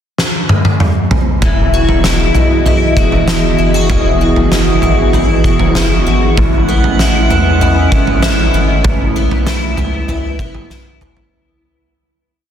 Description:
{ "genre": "dream pop", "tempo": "97 BPM", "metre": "4/4", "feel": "straight", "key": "E major", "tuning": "A4 = 440 Hz", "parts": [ { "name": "oversized low-tuned drum kit", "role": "drums", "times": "0.2-11.3 s", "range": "kick drum, snare drum, toms", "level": "-14 LUFS", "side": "equal", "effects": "none" }, { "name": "hollow soft pad", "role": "sustained chords", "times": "1.4-11.3 s", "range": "E3 to D#5", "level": "-17 LUFS", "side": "right 3 dB", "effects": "chorus" }, { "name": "picked twelve-string acoustic guitar", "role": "arpeggios", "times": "1.4-11.9 s", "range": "E3 to F#4", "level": "-16 LUFS", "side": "left 3 dB", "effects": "ensemble chorus, tape echo" }, { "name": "round analog bass", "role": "bass", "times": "1.4-11.3 s", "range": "E1 to E2", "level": "-16 LUFS", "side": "equal", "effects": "none" }, { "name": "drifting glass-harmonics texture", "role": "texture", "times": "6.5-7.5 s", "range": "F#5", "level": "-21 LUFS", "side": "right 2 dB", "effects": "chorus, built-in reverb, tape echo" } ], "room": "moderate concert hall reverb, RT60 2.1 s", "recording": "dense, heavily limited modern master", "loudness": "-10 LUFS", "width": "side -9 dB against mid", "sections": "0.0-1.4 pickup bar; 1.4-11.3 verse", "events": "drum fill 0.2-1.4, 10.7-11.3; fade-out 8.8-11.3", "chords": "0.0 N.C.; 1.4 Emaj9; 6.4 Amaj9", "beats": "0.18 0.80 | 1.42 2.04 2.66 3.28 | 3.90 4.51 5.13 5.75 | 6.37 6.99 7.61 8.23 | 8.84 9.46 10.08 10.70" }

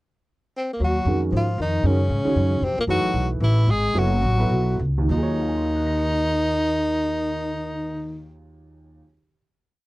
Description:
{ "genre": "modal jazz", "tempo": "195-231 BPM", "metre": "4/4", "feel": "swing 61% on 8ths", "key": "Eb dorian", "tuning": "A4 = 440 Hz", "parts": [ { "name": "clear tenor saxophone", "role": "melody", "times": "0.6-8.3 s", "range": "Bb3 to Ab4", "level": "-25 LUFS", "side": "equal", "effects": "none" }, { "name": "breathy tenor saxophone", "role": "second line", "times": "0.8-8.3 s", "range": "Bb2 to Ab3", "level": "-28 LUFS", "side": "left 3 dB", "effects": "none" }, { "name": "upright bass", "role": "bass", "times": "0.8-9.0 s", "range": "Gb1 to Ab2", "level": "-23 LUFS", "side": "equal", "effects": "none" }, { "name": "warm upright piano", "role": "accompaniment", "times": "1.1-9.4 s", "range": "Eb2 to F7", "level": "-28 LUFS", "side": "right 3 dB", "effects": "none" } ], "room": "light reverb", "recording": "dry, close 1970s-style studio recording", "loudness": "-20 LUFS", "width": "side -19 dB against mid", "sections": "0.0-0.8 pickup bar; 0.8-5.1 A section; 5.1-7.6 final chord", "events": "slowing down 2.9-5.1", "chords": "0.0 N.C.; 0.8 Ebm11; 2.9 Gbm11; 5.1 Ebm11", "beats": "0.02 0.28 0.54 | 0.80 1.06 1.32 1.58 | 1.84 2.10 2.36 2.62 | 2.88 3.14 3.41 3.67 | 3.94 4.22 4.50 4.79 | 5.10 5.40 5.71 6.02 | 6.32 6.63 6.94 7.24" }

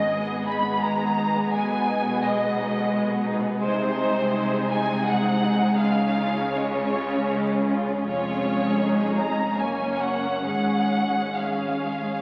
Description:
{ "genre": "classical, slow romantic movement for string orchestra", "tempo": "65-87 BPM", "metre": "3/4", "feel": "rubato", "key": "Db major from 3.6 s", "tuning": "A4 = 440 Hz", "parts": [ { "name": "rich studio violin section", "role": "melody", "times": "0.0-12.2 s", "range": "C5 to B5", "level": "-29 LUFS", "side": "equal", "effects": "none" }, { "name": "warm studio violin section", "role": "second line", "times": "0.0-12.2 s", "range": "G#3 to Db5", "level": "-32 LUFS", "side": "equal", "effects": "none" }, { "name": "warm symphonic viola section", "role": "accompaniment", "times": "0.0-12.2 s", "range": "G#3 to Eb4", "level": "-28 LUFS", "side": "equal", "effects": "none" }, { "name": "bright symphonic double bass section", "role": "bass", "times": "0.0-12.2 s", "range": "F1 to Db2", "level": "-39 LUFS", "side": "equal", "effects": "none" }, { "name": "rich symphonic cello section", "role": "bass", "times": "0.0-12.2 s", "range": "F2 to Db3", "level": "-35 LUFS", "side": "equal", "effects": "none" } ], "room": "wet scoring stage reverb, RT60 1.6 s", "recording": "very old 78 rpm record, vinyl crackle", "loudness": "-24 LUFS", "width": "mono", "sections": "0.0-12.2 A section", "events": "none", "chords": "0.0 G#m; 1.5 G#m/B; 3.6 Ab/C; 5.8 Db; 8.1 Db/F; 9.6 Gb; 10.4 Db/Ab", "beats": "0.11 0.81 | 1.52 2.22 2.93 | 3.62 4.34 5.06 | 5.79 6.54 7.31 | 8.06 8.80 9.58 | 10.45 11.36" }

